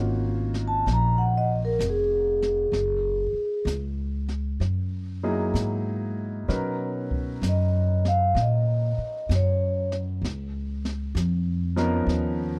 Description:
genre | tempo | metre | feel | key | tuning
jazz ballad | 64 BPM | 4/4 | swing 66% on 8ths | F# major | A4 = 440 Hz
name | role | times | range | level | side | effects
warm concert grand piano | accompaniment | 0.0-12.6 s | E#3 to B4 | -33 LUFS | equal | none
upright bass | bass | 0.0-12.6 s | E#1 to B2 | -28 LUFS | equal | none
jazz brush drum kit | drums | 0.5-12.6 s | brushed snare drum, hi-hat, kick drum, snare drum | -36 LUFS | equal | none
vibraphone with medium mallets | melody | 0.7-9.9 s | G#4 to A#5 | -28 LUFS | equal | none
room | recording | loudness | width
small room reverb | dry, close 1970s-style studio recording | -26 LUFS | mono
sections
0.0-12.6 A section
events
vibraphone solo 0.0-12.6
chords
0.0 D#m9; 2.7 F#13; 6.5 Bmaj9; 10.2 C#13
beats
0.86 1.80 | 2.73 3.66 4.60 5.55 | 6.49 7.43 8.37 9.31 | 10.24 11.17 12.09

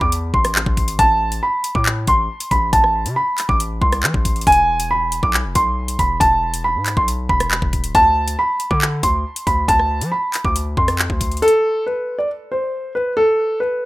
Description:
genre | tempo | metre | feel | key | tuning
hip hop, drill | 138 BPM | 4/4 | half-time | A harmonic minor | A4 = 440 Hz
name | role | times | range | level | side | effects
dark concert grand piano | melody | 0.0-13.9 s | A4 to D6 | -17 LUFS | equal | none
hard-hitting 808-style bass | bass | 0.0-11.4 s | D1 to F3 | -22 LUFS | equal | none
drill drum kit | drums | 0.0-11.5 s | handclaps, hi-hat, kick drum, rim click | -20 LUFS | equal | none
room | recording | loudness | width
digital ambience | rough home demo mix | -15 LUFS | side -18 dB against mid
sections
0.0-11.4 A section; 11.4-13.9 B section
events
none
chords
0.0 Am; 4.5 E5; 7.9 D5; 11.4 N.C.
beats
0.12 0.56 | 0.99 1.43 1.86 2.29 | 2.73 3.16 3.60 4.03 | 4.47 4.90 5.34 5.77 | 6.21 6.64 7.08 7.51 | 7.95 8.38 8.82 9.25 | 9.69 10.12 10.55 10.99 | 11.43 11.86 12.29 12.73 | 13.16 13.60

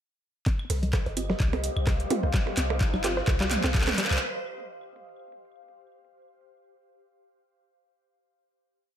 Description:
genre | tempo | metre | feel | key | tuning
minimal techno | 128 BPM | 4/4 | swing 55% on 16ths | C minor | A4 = 441 Hz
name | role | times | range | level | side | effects
hollow square pluck | riff | 0.5-4.0 s | G3 to C5 | -33 LUFS | left 1 dB | chorus, sidechain pumping, ping-pong delay
dusty soul sampler-style drum kit | drums | 0.5-4.2 s | hi-hat, snare drum | -45 LUFS | left 1 dB | none
electronic kick drum | drums | 0.5-3.8 s | none | -26 LUFS | equal | overdrive, small room reverb
garage drum kit | drums | 0.5-4.3 s | handclaps, hi-hat, rim click | -31 LUFS | equal | overdrive, small room reverb
riser | sound effects | 1.6-4.2 s | none | -38 LUFS | right 2 dB | none
ethereal airy pad | texture | 1.3-4.2 s | G4 to F5 | -38 LUFS | equal | ensemble chorus, built-in reverb, phaser, sidechain pumping
pulsing gated texture | texture | 0.8-4.2 s | Eb5 | -42 LUFS | right 6 dB | chorus, built-in reverb, sidechain pumping
electronic claves, percussion blips and toms | percussion | 0.6-4.2 s | none | -34 LUFS | right 4 dB | small room reverb, tape echo
punchy sub bass | bass | 0.7-4.2 s | G1 to C2 | -29 LUFS | equal | sidechain pumping
filtered dub chord stab | stabs | 1.2-3.1 s | C4 to G4 | -34 LUFS | equal | chorus, vintage 12-bit sampler grit, tape echo
room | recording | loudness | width
light reverb, digital ambience | none | -24 LUFS | side -10 dB against mid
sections
0.5-4.2 build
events
build-up 0.5-4.2; drum fill 0.5-4.2; filter sweep on synth arpeggio sound 0.5-4.2; filter sweep on synth stab 0.5-4.2; riser 1.6-4.2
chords
0.5 Csus4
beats
| 0.47 0.93 1.40 1.87 | 2.34 2.81 3.28 3.75

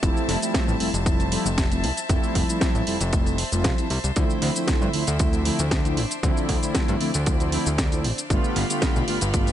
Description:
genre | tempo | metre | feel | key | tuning
nu-disco, nu disco | 116 BPM | 4/4 | straight | unclear | A4 = 441 Hz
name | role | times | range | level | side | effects
mellow synth brass | accompaniment | 0.0-9.5 s | D3 to F4 | -26 LUFS | equal | chorus, sidechain pumping, dub echo
clear studio violin section | sustained chords | 0.0-9.5 s | G3 to B5 | -32 LUFS | left 1 dB | sidechain pumping
fat analog bass | bass | 0.0-9.5 s | F1 to G2 | -26 LUFS | equal | none
electronic kick drum | drums | 0.0-9.4 s | none | -23 LUFS | equal | overdrive
house drum kit | drums | 0.0-9.5 s | hi-hat, shaker, snare drum | -28 LUFS | equal | overdrive
room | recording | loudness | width
little or no reverb | nothing above 11.0 kHz | -20 LUFS | side -11 dB against mid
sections
0.0-9.5 A section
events
none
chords
0.0 Fmaj7; 4.2 Dm9; 8.3 G7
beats
| 0.03 0.55 1.06 1.58 | 2.10 2.62 3.13 3.65 | 4.17 4.68 5.20 5.72 | 6.24 6.75 7.27 7.79 | 8.30 8.82 9.34

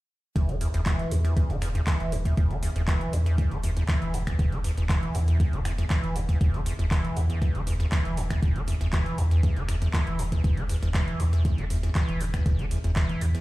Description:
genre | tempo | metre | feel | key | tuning
acid house | 119 BPM | 4/4 | straight | unclear | A4 = 440 Hz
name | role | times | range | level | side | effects
acid bass, square | riff | 0.4-13.4 s | D2 to E3 | -28 LUFS | equal | overdrive, wide subtle chorus, ping-pong delay
warm sub bass | bass | 0.4-13.4 s | E1 to E2 | -28 LUFS | equal | sidechain pumping
booming analog drum machine | drums | 0.4-13.4 s | finger snaps, handclaps, hi-hat | -36 LUFS | equal | overdrive
electronic kick drum | drums | 0.4-13.1 s | none | -24 LUFS | equal | none
room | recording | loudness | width
little or no reverb | played on a big sound system in a bare room, large studio reverb | -23 LUFS | side -18 dB against mid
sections
0.4-13.4 A section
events
none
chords
0.4 E5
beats
| 0.36 0.86 1.37 1.87 | 2.38 2.88 3.38 3.89 | 4.39 4.90 5.40 5.90 | 6.41 6.91 7.42 7.92 | 8.43 8.93 9.43 9.94 | 10.44 10.95 11.45 11.96 | 12.46 12.96

